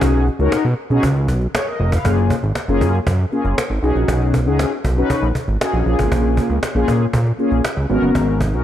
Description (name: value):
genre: early-eighties boogie funk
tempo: 118 BPM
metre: 4/4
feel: straight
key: F# major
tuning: A4 = 440 Hz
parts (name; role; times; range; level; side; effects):
- mellow synth brass; accompaniment; 0.0-8.6 s; A#3 to E#5; -19 LUFS; left 2 dB; chorus
- fat analog bass; bass; 0.0-8.6 s; E#1 to B2; -17 LUFS; right 1 dB; none
- cajon; drums; 0.0-8.6 s; none; -23 LUFS; equal; none
room: small room reverb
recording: dark, warm production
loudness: -15 LUFS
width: side -11 dB against mid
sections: 0.0-2.0 A section; 2.0-8.6 B section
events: none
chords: 0.0 B69; 1.0 C#7; 2.0 F#maj9; 3.8 B69; 5.9 A#m7; 7.9 G#m11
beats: | 0.02 0.52 1.03 1.54 | 2.05 2.56 3.07 3.58 | 4.08 4.59 5.10 5.61 | 6.12 6.63 7.13 7.64 | 8.15